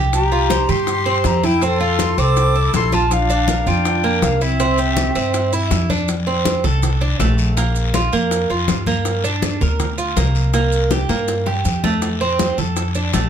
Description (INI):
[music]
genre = latin, Cuban son and guajira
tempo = 162 BPM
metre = 4/4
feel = straight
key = F major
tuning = A4 = 440 Hz
[part]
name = Cuban tres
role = arpeggios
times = 0.0-13.3 s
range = A3 to C5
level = -20 LUFS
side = right 4 dB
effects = none
[part]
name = upright bass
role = bass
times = 0.0-13.3 s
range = Bb1 to G2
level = -19 LUFS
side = equal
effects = none
[part]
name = silver concert flute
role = melody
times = 0.1-5.7 s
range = E5 to D6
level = -21 LUFS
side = left 4 dB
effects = none
[part]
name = breathy mellow jazz flute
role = second line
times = 0.1-5.7 s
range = C4 to A4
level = -23 LUFS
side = equal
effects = none
[part]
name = bongos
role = percussion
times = 0.1-13.3 s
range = none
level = -27 LUFS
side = left 6 dB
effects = none
[part]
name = congas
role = percussion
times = 0.1-13.3 s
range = none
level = -26 LUFS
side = left 2 dB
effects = none
[part]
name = guiro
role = percussion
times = 0.1-13.3 s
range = none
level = -30 LUFS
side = left 6 dB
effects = none
[part]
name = maracas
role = percussion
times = 0.1-13.3 s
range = none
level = -32 LUFS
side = right 6 dB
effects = none
[sound]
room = light reverb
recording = none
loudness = -15 LUFS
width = side -8 dB against mid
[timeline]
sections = 0.0-6.1 A section; 6.1-13.3 B section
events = drum fill 10.9-12.0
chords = 0.1 C7sus4; 1.6 Fmaj7; 3.1 Bb; 4.6 C; 6.1 F6; 7.6 Bb5; 9.1 Gm7; 10.5 C5; 12.0 F6